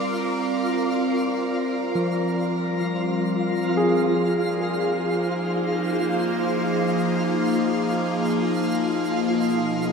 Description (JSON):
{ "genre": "ambient", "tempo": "free time", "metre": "none", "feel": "none", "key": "Ab lydian", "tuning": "A4 = 439 Hz", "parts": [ { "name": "evolving wavetable pad", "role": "sustained chords", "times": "0.0-9.9 s", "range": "B2 to D5", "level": "-24 LUFS", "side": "left 1 dB", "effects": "phaser, built-in reverb" }, { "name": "barky tine electric piano", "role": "arpeggios", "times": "0.0-8.8 s", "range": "F3 to D6", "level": "-27 LUFS", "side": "equal", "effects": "diffuse ambient delay" }, { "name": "twinkling granular texture", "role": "texture", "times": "0.0-9.9 s", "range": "F4 to F5", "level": "-27 LUFS", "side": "right 1 dB", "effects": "built-in reverb" } ], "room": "wet shimmer reverb, RT60 9.3 s", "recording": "none", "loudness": "-21 LUFS", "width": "side -5 dB against mid", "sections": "0.0-3.8 A section; 3.8-9.9 B section", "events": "none", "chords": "0.0 Gm7; 3.8 Ab6; 8.7 N.C." }